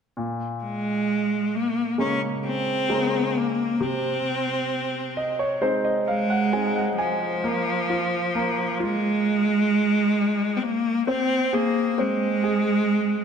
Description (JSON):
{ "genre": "pop", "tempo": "66 BPM", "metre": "4/4", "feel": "straight", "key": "Bb minor", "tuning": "A4 = 440 Hz", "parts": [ { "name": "clear concert grand piano", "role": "accompaniment", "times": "0.2-13.2 s", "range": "Bb2 to Ab5", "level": "-26 LUFS", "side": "equal", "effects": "none" }, { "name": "clear cello", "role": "melody", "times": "0.6-13.2 s", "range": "F3 to Db4", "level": "-23 LUFS", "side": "equal", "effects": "none" } ], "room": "wet concert hall reverb, RT60 1.8 s", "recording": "none", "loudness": "-21 LUFS", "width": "side -7 dB against mid", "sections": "0.2-7.4 A section; 7.4-13.2 B section", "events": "grand piano fill 4.7-7.4", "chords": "0.2 Bbm7; 3.8 Ab/C; 7.4 Bb5; 11.1 Ab", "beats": "| 0.17 1.08 1.99 2.89 | 3.80 4.71 5.62 6.53 | 7.44 8.35 9.26 10.17 | 11.08 11.98 12.89" }